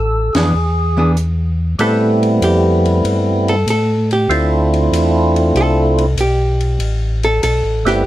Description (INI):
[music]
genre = soul jazz organ trio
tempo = 96 BPM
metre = 4/4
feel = swing 69% on 8ths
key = A minor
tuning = A4 = 439 Hz
[part]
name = percussive tonewheel organ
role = melody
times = 0.0-8.0 s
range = G3 to A4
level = -16 LUFS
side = right 1 dB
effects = slow rotary speaker, overdrive, plate reverb
[part]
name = mellow tonewheel organ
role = bass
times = 0.0-8.0 s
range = G1 to A2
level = -16 LUFS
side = equal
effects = chorus vibrato, slow rotary speaker
[part]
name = compact cocktail drum kit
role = drums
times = 0.3-8.0 s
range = hi-hat, ride cymbal, snare drum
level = -27 LUFS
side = left 2 dB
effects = none
[part]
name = archtop guitar, miked and amplified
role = accompaniment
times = 0.4-8.1 s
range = E3 to A4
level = -18 LUFS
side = equal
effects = none
[sound]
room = light reverb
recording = none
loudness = -12 LUFS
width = side -14 dB against mid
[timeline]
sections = 0.0-1.8 A section; 1.8-8.1 B section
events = band accent 0.2-0.5; hollow-body jazz guitar solo 1.8-8.1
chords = 0.0 Asus2; 0.5 E7; 1.8 Am9; 4.3 Dm9; 6.8 Am9